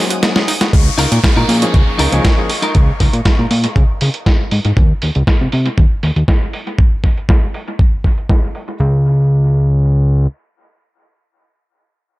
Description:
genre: nu-disco, nu disco.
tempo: 119 BPM.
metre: 4/4.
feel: straight.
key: Db major.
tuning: A4 = 440 Hz.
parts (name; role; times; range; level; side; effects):
barky reed electric piano; accompaniment; 0.0-2.5 s; F3 to C5; -23 LUFS; left 1 dB; vintage 12-bit sampler grit, sidechain pumping, dub echo.
muted symphonic violin section; sustained chords; 0.0-4.7 s; Bb4 to Eb6; -27 LUFS; equal; sidechain pumping, low-pass filter.
wide unison pluck; arpeggios; 0.0-0.7 s; Bb3 to Gb4; -27 LUFS; right 2 dB; none.
dusty soul sampler-style drum kit; drums; 0.1-8.8 s; hi-hat, snare drum; -19 LUFS; equal; overdrive, low-pass filter on hats, low-pass filter on snare, dub echo.
fat analog bass; bass; 0.7-10.3 s; Db2 to Db3; -13 LUFS; equal; none.
electronic kick drum; drums; 0.7-8.4 s; none; -12 LUFS; equal; overdrive.
downlifter; sound effects; 0.7-4.8 s; none; -25 LUFS; left 1 dB; none.
clean electric guitar; riff; 1.0-2.8 s; Eb4 to Bb4; -22 LUFS; left 1 dB; lush chorus, dub echo.
room: little or no reverb.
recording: echo-heavy mix.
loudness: -11 LUFS.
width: side -19 dB against mid.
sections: 0.7-8.8 A section; 8.8-12.2 B section.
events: break 0.0-0.7; drum fill 0.0-0.7; filter sweep on drum 0.7-8.8; filter sweep on analog synth bass 0.7-6.8; filter sweep on violin section 0.7-4.8.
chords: 0.0 Ab9sus4; 0.7 Db69; 4.8 N.C..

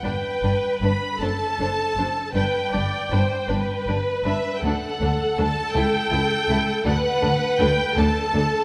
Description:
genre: classical, slow romantic movement for string orchestra.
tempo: 53 BPM (dotted quarters).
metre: 6/8.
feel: uneven beats, rubato.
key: G major.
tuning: A4 = 440 Hz.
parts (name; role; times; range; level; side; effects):
warm symphonic violin section; melody; 0.0-8.6 s; E5 to B5; -28 LUFS; equal; none.
warm symphonic violin section; second line; 0.0-8.4 s; D4 to C5; -33 LUFS; equal; none.
warm symphonic viola section; accompaniment; 0.0-8.6 s; A4 to D5; -27 LUFS; equal; none.
rich symphonic double bass section; bass; 0.0-8.4 s; F#1 to D2; -29 LUFS; equal; none.
warm symphonic cello section; bass; 0.0-8.4 s; C#2 to G2; -30 LUFS; equal; none.
room: wet scoring stage reverb, RT60 1.8 s.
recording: none.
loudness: -22 LUFS.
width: mono.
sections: 0.0-8.6 A section.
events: none.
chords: 0.0 G; 1.2 D7/F#; 2.3 G; 4.6 D; 5.8 A7; 6.9 D.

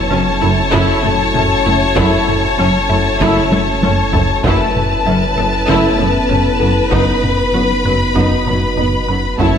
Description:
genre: cinematic, hybrid orchestral and electronic film score.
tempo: 97 BPM.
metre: 4/4.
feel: straight.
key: F# dorian.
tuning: A4 = 438 Hz.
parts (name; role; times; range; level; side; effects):
clear symphonic violin section; melody; 0.0-9.6 s; A5 to B5; -19 LUFS; left 4 dB; none.
rich symphonic violin section; second line; 0.0-9.6 s; B4 to C#5; -19 LUFS; left 3 dB; none.
analog drone; sustained chords; 0.0-9.6 s; F#3 to B4; -22 LUFS; right 1 dB; chorus.
warm sub bass; bass; 0.0-9.6 s; F#1; -24 LUFS; equal; none.
rich symphonic viola section; accompaniment; 0.1-9.6 s; F#3 to E4; -22 LUFS; right 2 dB; none.
resonant blip pluck; arpeggios; 0.1-9.6 s; F#3 to B4; -26 LUFS; equal; none.
round analog bass; riff; 0.1-9.6 s; F#2 to F#3; -21 LUFS; left 2 dB; none.
clear symphonic cello section; bass; 0.1-9.5 s; F#2; -22 LUFS; right 2 dB; none.
rich symphonic double bass section; bass; 0.1-9.5 s; F#1; -23 LUFS; right 3 dB; none.
mellow French horn section; sustained chords; 0.7-9.6 s; A3 to E4; -24 LUFS; left 2 dB; none.
taiko ensemble; drums; 0.7-9.6 s; none; -22 LUFS; equal; none.
room: moderate scoring stage reverb, RT60 1.6 s.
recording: none.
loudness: -12 LUFS.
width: side -8 dB against mid.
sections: 0.0-9.6 A section.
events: drum fill 3.5-4.4.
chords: 0.0 F#m7; 4.4 Aadd9/F#; 6.9 B/F#.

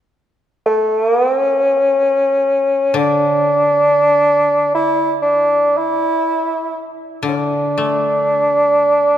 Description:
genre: japanese traditional, Japanese chamber music.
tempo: free time.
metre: none.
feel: none.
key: unclear.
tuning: A4 = 436 Hz.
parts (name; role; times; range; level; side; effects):
mellow bassoon; melody; 0.7-9.2 s; C#4 to E4; -13 LUFS; equal; none.
koto; accompaniment; 2.9-9.2 s; D3 to A3; -22 LUFS; left 4 dB; none.
room: moderate church reverb, RT60 3.6 s.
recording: minimal, uncompressed stereo recording.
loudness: -13 LUFS.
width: side -11 dB against mid.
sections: 0.0-9.2 A section.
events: none.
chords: none.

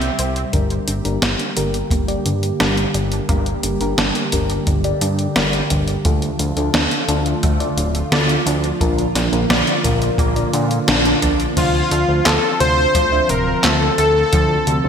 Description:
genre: synthwave.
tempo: 87 BPM.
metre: 4/4.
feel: straight.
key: D minor.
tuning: A4 = 440 Hz.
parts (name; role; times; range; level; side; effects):
wide unison lead; melody; 0.0-0.1, 11.6-14.9 s; F4 to C5; -18 LUFS; left 1 dB; digital delay.
chorused pulse-width pad; sustained chords; 0.0-14.9 s; C3 to E5; -25 LUFS; right 1 dB; none.
analog pluck; arpeggios; 0.0-14.9 s; C3 to D5; -25 LUFS; right 1 dB; chorus, digital delay.
fat analog bass; bass; 0.0-14.9 s; D1 to Bb2; -22 LUFS; equal; none.
detuned 8-bit digital drum machine; drums; 0.0-14.8 s; crash cymbal, handclaps, hi-hat, snare drum; -20 LUFS; equal; overdrive, gated reverb.
mellow FM electric piano; stabs; 0.5-14.9 s; Bb2 to E5; -24 LUFS; left 2 dB; chorus, phaser, digital delay.
kick drum; drums; 0.5-14.5 s; none; -21 LUFS; equal; none.
airy dreamy lead; second line; 11.6-14.9 s; F4 to C5; -26 LUFS; left 2 dB; none.
room: wet lush hall reverb, RT60 2.0 s.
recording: bright 1980s-style digital production.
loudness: -15 LUFS.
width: side -7 dB against mid.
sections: 0.5-11.6 A section; 11.6-14.9 B section.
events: break 0.0-0.5; filter sweep on synth arpeggio sound 0.5-11.6.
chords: 0.0 C; 0.5 Gm; 6.0 Dm; 8.8 Bb; 11.6 Dm7.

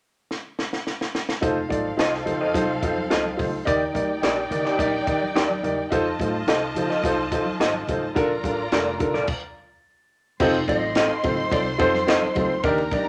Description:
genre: uptempo 1960s-style soul.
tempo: 107 BPM.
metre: 4/4.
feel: straight.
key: F mixolydian.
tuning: A4 = 440 Hz.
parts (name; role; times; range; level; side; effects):
compact cocktail drum kit; drums; 0.3-13.1 s; crash cymbal, hi-hat, kick drum, ride cymbal, snare drum; -30 LUFS; equal; none.
warm studio string section; second line; 1.4-13.1 s; C4 to C6; -33 LUFS; equal; none.
warm grand piano; accompaniment; 1.4-13.1 s; C4 to D5; -26 LUFS; equal; none.
upright bass; bass; 1.4-13.1 s; F1 to F3; -37 LUFS; equal; none.
congas; percussion; 1.4-13.1 s; none; -38 LUFS; equal; none.
electric guitar through a small old amp; stabs; 2.0-12.2 s; Eb4 to Eb5; -27 LUFS; equal; tremolo.
electric guitar through a small old amp; melody; 10.7-13.1 s; Bb4 to Eb5; -28 LUFS; equal; none.
room: moderate large studio reverb, RT60 0.9 s.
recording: none.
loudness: -23 LUFS.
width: mono.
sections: 0.0-1.4 A section; 1.4-10.4 B section; 10.4-13.1 C section.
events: drum fill 0.3-1.4; stop 9.3-10.4.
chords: 0.0 N.C.; 1.4 F7; 3.7 Ebmaj7; 5.9 F7; 8.2 Bbmaj7; 10.4 F7.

